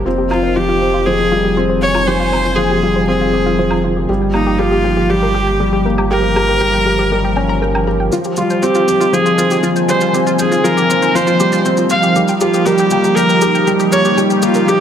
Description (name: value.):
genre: piano and strings electronica.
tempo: 119 BPM.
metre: 4/4.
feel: straight.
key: F minor.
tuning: A4 = 440 Hz.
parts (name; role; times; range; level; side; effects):
lush unison pad; sustained chords; 0.0-14.8 s; F3 to Ab5; -20 LUFS; right 2 dB; chorus, phaser.
felt-muted upright piano; riff; 0.0-14.8 s; F3 to Bb4; -16 LUFS; left 1 dB; none.
warm sub bass; bass; 0.0-8.1 s; F1 to G1; -21 LUFS; equal; none.
analog pluck; arpeggios; 0.1-14.7 s; F4 to Bb5; -23 LUFS; left 1 dB; chorus, digital delay.
clear viola; melody; 0.3-14.8 s; Eb4 to F5; -16 LUFS; equal; low-pass filter.
woodblock and shaker; drums; 0.3-14.8 s; none; -26 LUFS; equal; none.
room: moderate concert hall reverb, RT60 2.1 s.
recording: none.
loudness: -11 LUFS.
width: side -9 dB against mid.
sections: 0.0-8.1 A section; 8.1-14.8 B section.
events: filter sweep on synth arpeggio sound 0.0-8.1; build-up 8.1-14.8; filter sweep on viola 8.1-14.8.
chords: 0.1 Fmadd9; 4.1 Gdim; 8.1 Fmadd9; 12.2 F9sus4.